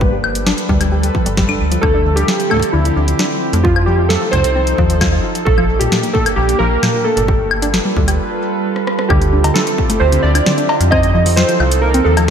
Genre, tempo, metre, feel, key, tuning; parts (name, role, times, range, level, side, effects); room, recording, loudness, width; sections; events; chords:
IDM; 132 BPM; 4/4; straight; D minor; A4 = 441 Hz
warbly lo-fi synth keys; melody; 0.0-12.3 s; E4 to Eb5; -18 LUFS; right 2 dB; chorus, slapback echo, digital delay
warbly tape-like pad; sustained chords; 0.0-12.3 s; D3 to B4; -21 LUFS; right 1 dB; chorus, built-in reverb
warbly dusty pluck; arpeggios; 0.0-12.2 s; Bb2 to G4; -21 LUFS; left 1 dB; chorus, slapback echo, ping-pong delay
metallic FM bass; bass; 0.0-12.3 s; G1 to F2; -16 LUFS; equal
electronic kick drum; drums; 0.0-11.0 s; -18 LUFS; equal
booming analog drum machine; drums; 0.2-12.3 s; cowbell, hi-hat, rim click, snare drum, woodblock; -20 LUFS; left 2 dB; overdrive, slapback echo
moderate lush hall reverb, RT60 1.8 s; big arena sound; -12 LUFS; side -8 dB against mid
0.0-9.1 A section; 9.1-12.3 B section
break 8.2-9.1; drum fill 8.8-9.1
0.0 G9; 1.8 Dm11; 3.6 F7; 5.5 Bb6; 7.3 G9; 9.1 Dm11; 10.9 F7